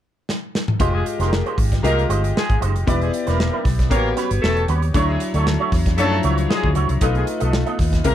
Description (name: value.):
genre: polished 1980s jazz-funk pop.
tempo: 116 BPM.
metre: 4/4.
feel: swing 54% on 16ths.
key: unclear.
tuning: A4 = 444 Hz.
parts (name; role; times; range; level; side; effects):
modern studio drum kit; drums; 0.3-8.1 s; hi-hat, kick drum, snare drum, toms; -22 LUFS; equal; none.
bright grand piano; accompaniment; 0.8-8.1 s; F3 to Eb5; -23 LUFS; left 3 dB; analog chorus.
electric guitar with an envelope filter; riff; 0.8-8.0 s; G3 to D#5; -26 LUFS; right 9 dB; ensemble chorus.
vintage muted fingered electric bass; bass; 0.8-8.1 s; E1 to F#2; -20 LUFS; equal; none.
dark horn section; second line; 0.9-8.1 s; Ab3 to Bb4; -24 LUFS; left 2 dB; none.
room: little or no reverb.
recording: none.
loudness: -17 LUFS.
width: side -11 dB against mid.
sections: 0.8-8.1 A section.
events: drum fill 0.3-0.8.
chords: 0.0 N.C.; 0.8 Fm9; 2.9 Em7; 3.9 A13; 4.9 Dmaj9; 7.0 B7#11.